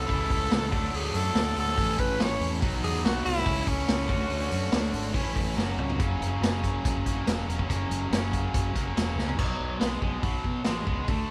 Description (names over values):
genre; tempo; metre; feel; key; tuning
classic rock; 142 BPM; 4/4; straight; unclear; A4 = 440 Hz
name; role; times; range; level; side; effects
growling tenor saxophone; melody; 0.0-5.6 s; C#4 to C#5; -33 LUFS; equal; none
biting overdriven guitar; riff; 0.0-11.3 s; F#2 to F#4; -34 LUFS; equal; none
fuzz fingered electric bass; bass; 0.0-11.2 s; E1 to B2; -34 LUFS; equal; overdrive
vintage drum kit; drums; 0.1-11.2 s; crash cymbal, hi-hat, kick drum, snare drum, toms; -31 LUFS; equal; none
room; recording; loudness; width
moderate stone room reverb, RT60 1.1 s; band playing live in one room; -27 LUFS; mono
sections
0.0-6.0 A section; 6.0-9.4 B section; 9.4-11.3 C section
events
drum fill 5.6-6.0, 9.2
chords
0.1 A/C#; 0.7 D; 1.8 A; 2.6 B; 3.5 A/C#; 4.1 D; 5.1 A; 5.6 F#; 9.4 B5